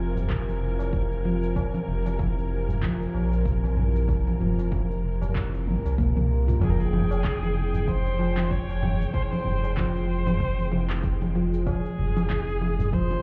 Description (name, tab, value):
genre	organic downtempo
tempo	95 BPM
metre	4/4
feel	swing 58% on 16ths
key	F minor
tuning	A4 = 440 Hz
part	dark symphonic string section	sustained chords	0.0-13.2 s	C3 to G5	-38 LUFS	equal	sidechain pumping
part	handpan	arpeggios	0.0-13.2 s	C3 to F4	-32 LUFS	equal	vintage 12-bit sampler grit, tape echo
part	warm sub bass	bass	0.0-13.2 s	F1 to C2	-29 LUFS	equal	none
part	wind-like tuned noise texture	texture	0.0-6.6 s	F4 to Ab5	-48 LUFS	equal	built-in reverb
part	deep house drum kit	drums	0.2-13.2 s	cabasa, congas, handclaps, toms	-34 LUFS	equal	overdrive
part	tabla	percussion	0.2-13.2 s	none	-36 LUFS	equal	none
part	electronic kick drum	drums	0.3-13.1 s	none	-32 LUFS	equal	overdrive
part	warm kamancheh	melody	6.6-13.2 s	Ab4 to Db5	-35 LUFS	equal	tape echo
part	impact	sound effects	6.6-9.1 s	none	-35 LUFS	equal	none
room	small room reverb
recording	heard muffled through a wall, club reverb, EQ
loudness	-25 LUFS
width	mono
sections	0.0-6.6 A section; 6.6-13.2 B section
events	drum fill 5.7-6.6; impact 6.6-9.1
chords	0.0 Fm; 6.6 Fmadd9